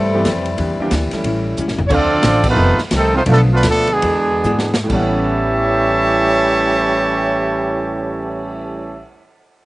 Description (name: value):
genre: jazz, big band swing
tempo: 128-183 BPM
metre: 4/4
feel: swing 62% on 8ths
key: unclear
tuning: A4 = 443 Hz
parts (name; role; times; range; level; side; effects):
- clear saxophone section; melody; 0.0-1.5 s; G3 to A4; -23 LUFS; left 3 dB; slapback echo
- clear trombone section; second line; 0.0-9.0 s; A2 to D4; -21 LUFS; right 2 dB; none
- vintage hollow-body jazz guitar; accompaniment; 0.0-9.1 s; F2 to B4; -26 LUFS; left 3 dB; slapback echo
- upright bass; bass; 0.0-9.0 s; F1 to G#2; -20 LUFS; equal; none
- bright grand piano; accompaniment; 0.1-9.1 s; A2 to F#5; -24 LUFS; right 1 dB; none
- swinging big-band drum kit; drums; 0.2-8.5 s; crash cymbal, cymbal swell, hi-hat, kick drum, ride cymbal, snare drum, toms; -23 LUFS; equal; none
- bright trumpet section; melody; 1.9-9.0 s; A3 to A5; -16 LUFS; right 1 dB; none
room: little or no reverb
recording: recorded outdoors, with no room sound, nothing above 10.3 kHz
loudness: -13 LUFS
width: side -19 dB against mid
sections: 0.0-1.9 A section; 1.9-4.9 B section; 4.9-8.7 C section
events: drum fill 1.6-1.9, 4.5-4.9; slowing down 1.9-4.9; band accent 2.4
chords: 0.0 Am9; 0.6 Em7b5; 1.2 A7; 1.9 Dm7; 2.6 F7; 3.3 Bm7b5; 4.0 E7; 4.9 A13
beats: 0.26 | 0.59 0.92 1.25 1.57 | 1.90 2.23 2.57 2.91 | 3.27 3.64 4.03 4.45 | 4.90 5.37 5.84 6.31 | 6.78 7.25 7.71 8.18